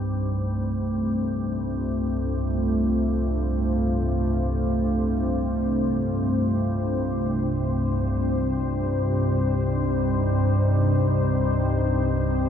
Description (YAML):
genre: dark ambient drone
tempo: free time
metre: none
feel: none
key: unclear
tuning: A4 = 440 Hz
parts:
  - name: deep dark ambient pad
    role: sustained chords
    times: 0.0-12.5 s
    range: G3 to C5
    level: -25 LUFS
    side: left 1 dB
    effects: chorus, built-in reverb
  - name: gamelan-type bossed gongs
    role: arpeggios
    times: 0.0-2.3 s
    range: none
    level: barely audible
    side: none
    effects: none
  - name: organ-like drone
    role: drone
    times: 0.0-12.5 s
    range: C2 to G2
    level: -24 LUFS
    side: equal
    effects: ensemble chorus, built-in reverb
room: wet cathedral reverb, RT60 5.4 s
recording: in a vast, echoing space, cassette tape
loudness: -22 LUFS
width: side -8 dB against mid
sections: 0.0-12.5 A section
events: none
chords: 0.0 F; 7.0 Cm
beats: free time